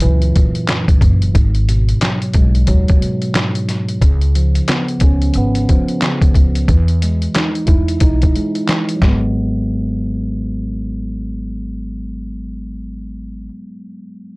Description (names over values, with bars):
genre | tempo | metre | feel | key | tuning
hip hop, boom-bap hip-hop | 90 BPM | 4/4 | swing 60% on 16ths | G# minor | A4 = 442 Hz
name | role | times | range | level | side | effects
mellow tine electric piano | accompaniment | 0.0-14.4 s | F#2 to E4 | -20 LUFS | equal | high-pass filter, low-pass filter
upright bass | bass | 0.0-13.5 s | F#1 to E2 | -17 LUFS | equal | none
trip hop sampler-style drum kit | drums | 0.0-9.2 s | handclaps, hi-hat, kick drum, snare drum | -14 LUFS | equal | none
room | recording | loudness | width
little or no reverb | dark, warm production | -13 LUFS | side -25 dB against mid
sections
0.0-9.3 A section; 9.3-12.0 B section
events
filter sweep on tine electric piano 0.0-9.3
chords
0.0 F#7; 1.4 G#m7; 4.0 C#7; 6.7 Emaj7; 9.0 G#m7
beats
0.02 0.68 | 1.35 2.02 2.68 3.35 | 4.02 4.68 5.35 6.02 | 6.68 7.35 8.02 8.68 | 9.35 10.02 10.68 11.35